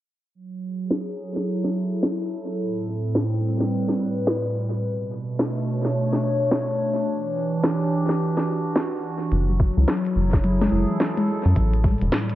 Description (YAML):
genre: IDM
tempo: 107 BPM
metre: 4/4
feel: swing 62% on 16ths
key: F# phrygian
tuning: A4 = 440 Hz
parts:
  - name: hollow soft pad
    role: sustained chords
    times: 0.3-12.3 s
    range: A2 to C#5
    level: -24 LUFS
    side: equal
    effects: chorus, sidechain pumping
  - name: glitchy drum kit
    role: drums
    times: 0.9-12.3 s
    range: hi-hat, snare drum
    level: -26 LUFS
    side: equal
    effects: overdrive, studio reverb, tape echo
  - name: rubbery square bass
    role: bass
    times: 9.3-12.1 s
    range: E1 to F#2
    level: -20 LUFS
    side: equal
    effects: none
  - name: harp-like synth pluck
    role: arpeggios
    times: 9.5-12.2 s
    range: E3 to E4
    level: -25 LUFS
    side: left 1 dB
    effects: chorus, cassette tape, analog delay
  - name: electronic kick drum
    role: drums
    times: 9.6-12.0 s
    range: none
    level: -21 LUFS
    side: equal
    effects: overdrive, studio reverb
room: moderate spring reverb, RT60 2.3 s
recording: echo-heavy mix, low-pass filter, nothing above 10.6 kHz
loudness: -21 LUFS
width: side -14 dB against mid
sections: 0.3-12.3 A section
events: filter sweep 0.3-12.3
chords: 0.3 F#m9; 2.6 Am9; 4.8 Bm9; 7.1 Em9; 9.3 F#m9; 11.6 A7(no3)